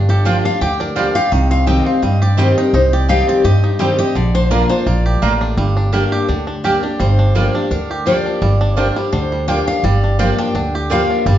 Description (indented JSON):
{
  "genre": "bluegrass",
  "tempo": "169 BPM",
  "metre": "4/4",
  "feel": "swing 54% on 8ths",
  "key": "G minor",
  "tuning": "A4 = 442 Hz",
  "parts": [
    { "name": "bluegrass banjo", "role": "melody", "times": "0.0-11.4 s", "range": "D3 to G4", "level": "-23 LUFS", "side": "right 3 dB", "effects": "tape echo" },
    { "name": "picked steel-string acoustic guitar", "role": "accompaniment", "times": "0.0-11.4 s", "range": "G2 to G4", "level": "-18 LUFS", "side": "left 1 dB", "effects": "none" },
    { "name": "upright bass", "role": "bass", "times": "0.0-11.4 s", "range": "G1 to G2", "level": "-17 LUFS", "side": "equal", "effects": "none" },
    { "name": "picked steel-string acoustic guitar", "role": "melody", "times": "0.1-11.4 s", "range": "G4 to G5", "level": "-20 LUFS", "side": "left 2 dB", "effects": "none" },
    { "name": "mandolin", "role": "stabs", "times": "0.3-11.0 s", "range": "Bb3 to Bb5", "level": "-22 LUFS", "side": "right 4 dB", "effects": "none" }
  ],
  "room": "wet large studio reverb, RT60 1.0 s",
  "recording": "heard from further back in the room, nothing above 7.5 kHz",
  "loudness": "-13 LUFS",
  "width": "side -12 dB against mid",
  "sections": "0.0-7.0 A section; 7.0-11.4 B section",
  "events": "steel-string acoustic guitar solo 0.0-7.0",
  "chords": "0.0 Gm7; 1.3 Cm; 4.2 Bb; 5.6 Gm; 7.0 Gm7"
}